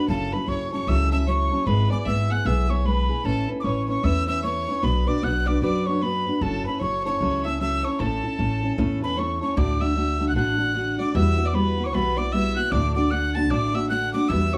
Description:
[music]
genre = celtic folk, Celtic hornpipe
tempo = 152 BPM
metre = 4/4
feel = swing 61% on 8ths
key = A major, D major from 9.6 s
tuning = A4 = 441 Hz
[part]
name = mid whistle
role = melody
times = 0.0-14.6 s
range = A5 to A6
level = -30 LUFS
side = equal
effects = none
[part]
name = rich fiddle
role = second line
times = 0.0-14.6 s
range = A4 to A5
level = -35 LUFS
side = equal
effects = none
[part]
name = fingerpicked steel-string acoustic guitar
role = accompaniment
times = 0.0-14.6 s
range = D2 to B4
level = -28 LUFS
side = equal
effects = none
[part]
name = upright bass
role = bass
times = 0.1-14.6 s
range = F#1 to F#2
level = -28 LUFS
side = equal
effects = none
[sound]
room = light reverb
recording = small room ambience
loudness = -23 LUFS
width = mono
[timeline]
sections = 0.0-9.6 A section; 9.6-14.6 B section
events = none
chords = 0.1 F#m7; 1.7 E/G#; 3.2 Aadd9; 4.8 Bm; 6.4 F#m7; 8.0 A; 9.6 D; 11.1 Emadd9; 12.7 D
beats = | 0.08 0.48 0.88 1.27 | 1.67 2.06 2.46 2.85 | 3.25 3.65 4.04 4.44 | 4.83 5.23 5.62 6.02 | 6.41 6.81 7.20 7.60 | 7.99 8.39 8.78 9.18 | 9.57 9.97 10.36 10.75 | 11.15 11.54 11.94 12.33 | 12.72 13.12 13.51 13.90 | 14.30

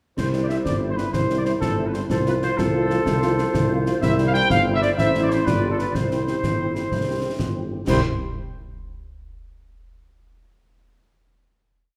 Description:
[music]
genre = military-style march for wind band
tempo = 125 BPM (dotted quarters)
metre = 6/8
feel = straight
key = C major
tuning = A4 = 440 Hz
[part]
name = mellow trumpet section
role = melody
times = 0.2-8.0 s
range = A4 to G5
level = -28 LUFS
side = equal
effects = none
[part]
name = mellow woodwind section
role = second line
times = 0.2-8.0 s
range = E4 to D5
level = -29 LUFS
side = equal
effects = none
[part]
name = mellow tuba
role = bass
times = 0.2-8.0 s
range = G1 to C2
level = -27 LUFS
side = equal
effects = none
[part]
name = concert snare drum, clash cymbals and concert bass drum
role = drums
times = 0.2-8.1 s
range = none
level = -29 LUFS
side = equal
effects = none
[part]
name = mellow French horn section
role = accompaniment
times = 0.3-8.0 s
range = F3 to G4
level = -33 LUFS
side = equal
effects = none
[sound]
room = wet recital hall reverb, RT60 1.4 s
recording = recorded in a church or concert hall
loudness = -22 LUFS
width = mono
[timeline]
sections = 0.2-7.9 A section; 7.9-8.8 final chord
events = none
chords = 0.2 C; 2.1 F/C; 4.0 C; 5.0 Am; 5.5 G7; 6.0 C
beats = | 0.17 0.66 | 1.14 1.62 | 2.10 2.58 | 3.06 3.54 | 4.02 4.50 | 4.99 5.47 | 5.95 6.43 | 6.91 7.39 | 7.88

